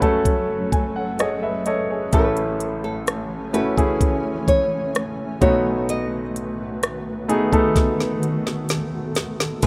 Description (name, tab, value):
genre	pop ballad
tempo	64 BPM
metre	4/4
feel	straight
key	unclear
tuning	A4 = 438 Hz
part	clear concert grand piano	accompaniment	0.0-9.7 s	F#1 to G#5	-25 LUFS	equal	none
part	granular cloud pad	sustained chords	0.0-9.7 s	D#3 to G#5	-30 LUFS	equal	built-in reverb
part	smooth R&B drum kit	drums	0.0-9.7 s	crash cymbal, hi-hat, kick drum, rim click, snare drum	-23 LUFS	equal	none
part	nylon-string guitar	melody	2.1-9.7 s	A4 to D#5	-27 LUFS	equal	none
room	little or no reverb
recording	rough home demo mix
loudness	-22 LUFS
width	mono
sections	0.0-9.6 A section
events	grand piano fill 0.3-2.1; drum fill 7.8-9.6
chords	0.0 F#m; 2.1 Amaj7; 5.4 B7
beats	0.26 1.20 | 2.13 3.07 4.01 4.95 | 5.88 6.82 7.76 8.70 | 9.63